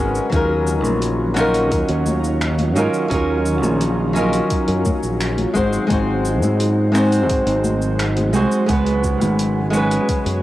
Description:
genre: sunset chillout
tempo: 86 BPM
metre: 4/4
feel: straight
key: Eb minor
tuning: A4 = 440 Hz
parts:
  - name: flamenco guitar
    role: accompaniment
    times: 0.0-10.4 s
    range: Gb3 to C5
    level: -19 LUFS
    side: equal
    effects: auto-pan, cassette tape, analog delay, shimmer reverb
  - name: shimmering ambient pad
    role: sustained chords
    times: 0.0-10.4 s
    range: Db3 to F4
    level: -26 LUFS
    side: equal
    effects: chorus, built-in reverb, cassette tape
  - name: fingered electric bass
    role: bass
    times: 0.0-10.4 s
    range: Ab1 to Ab2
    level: -20 LUFS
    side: equal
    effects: none
  - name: smooth R&B drum kit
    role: drums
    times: 0.2-10.4 s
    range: finger snaps, hi-hat, shaker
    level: -30 LUFS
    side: equal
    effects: overdrive, cassette tape
  - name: electronic kick drum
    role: drums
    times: 0.3-10.2 s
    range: none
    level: -23 LUFS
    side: equal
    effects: overdrive, cassette tape
  - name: congas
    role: percussion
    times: 0.8-9.4 s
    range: none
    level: -27 LUFS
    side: left 2 dB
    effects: none
room: moderate spring reverb, RT60 2.5 s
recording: home recording on cassette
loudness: -16 LUFS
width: side -15 dB against mid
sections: 0.0-10.4 A section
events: none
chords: 0.3 Ebm9; 5.6 Ab7; 8.7 Db7sus4

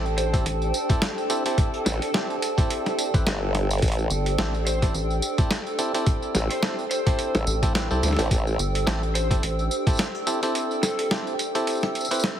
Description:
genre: glitch hop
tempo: 107 BPM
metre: 4/4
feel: swing 57% on 16ths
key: A minor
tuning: A4 = 440 Hz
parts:
  - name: warbly tape-like pad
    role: sustained chords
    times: 0.0-12.4 s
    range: A4 to E6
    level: -31 LUFS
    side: equal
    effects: chorus, built-in reverb, sidechain pumping
  - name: bright clav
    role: stabs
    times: 0.0-12.4 s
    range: C4 to B4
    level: -30 LUFS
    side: right 1 dB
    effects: sidechain pumping, digital delay
  - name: rubbery square bass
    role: bass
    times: 0.0-9.7 s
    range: G1 to D2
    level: -26 LUFS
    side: equal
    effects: none
  - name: ethereal airy pad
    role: texture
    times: 0.0-12.4 s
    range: D4 to D5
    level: -32 LUFS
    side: right 2 dB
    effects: ensemble chorus, built-in reverb, sidechain pumping
  - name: boom bap sampler-style drum kit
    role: drums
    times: 0.1-12.4 s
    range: hi-hat, snare drum, tambourine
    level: -28 LUFS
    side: equal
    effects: none
  - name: lead guitar through a small cranked amp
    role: melody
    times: 0.2-11.1 s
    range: A4 to C5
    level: -32 LUFS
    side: left 2 dB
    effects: overdrive, digital delay
  - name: electronic kick drum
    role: drums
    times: 0.3-10.0 s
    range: none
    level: -22 LUFS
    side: equal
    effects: none
  - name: formant-sweep wobble bass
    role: bass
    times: 1.9-8.6 s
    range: G1 to A1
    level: -24 LUFS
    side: equal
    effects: chorus, overdrive
room: light reverb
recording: heavily compressed radio sound, multiband compression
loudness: -22 LUFS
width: side -10 dB against mid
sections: 0.0-12.4 A section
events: none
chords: 0.0 Am7

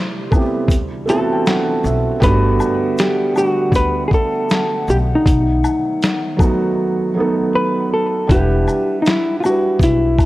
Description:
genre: lo-fi hip hop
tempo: 79 BPM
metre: 4/4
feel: swing 65% on 16ths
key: E minor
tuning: A4 = 443 Hz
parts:
  - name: hollow-body jazz guitar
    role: melody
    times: 0.0-10.3 s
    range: D#4 to C5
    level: -18 LUFS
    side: left 1 dB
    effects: low-pass filter
  - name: warbly tape-like pad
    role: sustained chords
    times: 0.0-8.3 s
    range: C3 to F#5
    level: -28 LUFS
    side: left 1 dB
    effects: chorus, built-in reverb, low-pass filter
  - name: felt-muted upright piano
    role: accompaniment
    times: 0.3-10.3 s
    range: F#3 to A5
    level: -19 LUFS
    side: right 2 dB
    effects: low-pass filter
  - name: boom bap sampler-style drum kit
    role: drums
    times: 0.3-10.3 s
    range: hi-hat, kick drum, shaker, snare drum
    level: -17 LUFS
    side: equal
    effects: none
  - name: egg shaker and woodblock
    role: percussion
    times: 0.3-10.3 s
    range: none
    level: -30 LUFS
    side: left 3 dB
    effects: none
  - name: upright bass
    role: bass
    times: 0.7-10.2 s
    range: E1 to D2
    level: -19 LUFS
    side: equal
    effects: none
room: light reverb, studio ambience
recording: worn, warbling old tape, cassette tape, warbly pitch drift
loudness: -14 LUFS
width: side -17 dB against mid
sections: 0.0-8.3 A section; 8.3-10.3 B section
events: drums muted 6.8-8.3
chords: 0.0 Am9; 0.7 D13; 2.2 Gmaj9; 5.3 B7; 8.3 Em9

